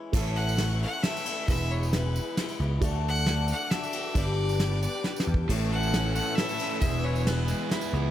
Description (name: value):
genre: folk rock and heartland rock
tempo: 135 BPM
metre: 3/4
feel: straight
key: A major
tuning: A4 = 440 Hz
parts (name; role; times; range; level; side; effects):
- picked swing-style acoustic guitar; accompaniment; 0.0-8.1 s; E2 to A4; -35 LUFS; left 7 dB; none
- dark upright piano; accompaniment; 0.1-8.1 s; D4 to E5; -40 LUFS; right 8 dB; none
- warm studio string section; sustained chords; 0.1-8.1 s; G#4 to E6; -43 LUFS; left 1 dB; none
- picked electric bass; bass; 0.1-8.1 s; E1 to E2; -27 LUFS; equal; none
- soft brush drum kit; drums; 0.1-7.8 s; crash cymbal, kick drum, ride cymbal, snare drum; -30 LUFS; equal; none
- tambourine; percussion; 0.1-7.9 s; none; -45 LUFS; right 7 dB; none
- bright fiddle; melody; 0.4-7.9 s; B4 to F#5; -33 LUFS; equal; none
- overdriven electric guitar; riff; 5.5-8.1 s; E2 to E4; -32 LUFS; right 1 dB; none
room: little or no reverb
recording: none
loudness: -25 LUFS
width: side -12 dB against mid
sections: 0.1-8.1 A section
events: drum fill 5.0-5.5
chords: 0.1 A; 1.5 E; 2.8 D; 4.2 G; 5.5 A; 6.8 E